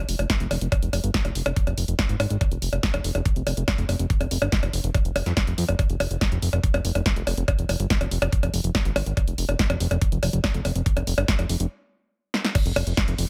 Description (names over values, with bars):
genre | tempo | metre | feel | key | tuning
psychedelic trance | 142 BPM | 4/4 | straight | F minor | A4 = 440 Hz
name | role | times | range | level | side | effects
fat analog bass | bass | 0.0-13.3 s | F1 to F2 | -27 LUFS | equal | none
techno drum kit | drums | 0.1-13.3 s | crash cymbal, hi-hat, percussion blips, snare drum | -29 LUFS | equal | none
electronic kick drum | drums | 0.3-13.1 s | none | -26 LUFS | equal | none
room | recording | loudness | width
little or no reverb | none | -24 LUFS | mono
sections
0.0-12.6 A section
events
stop 11.7-12.6; drum fill 12.3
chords
none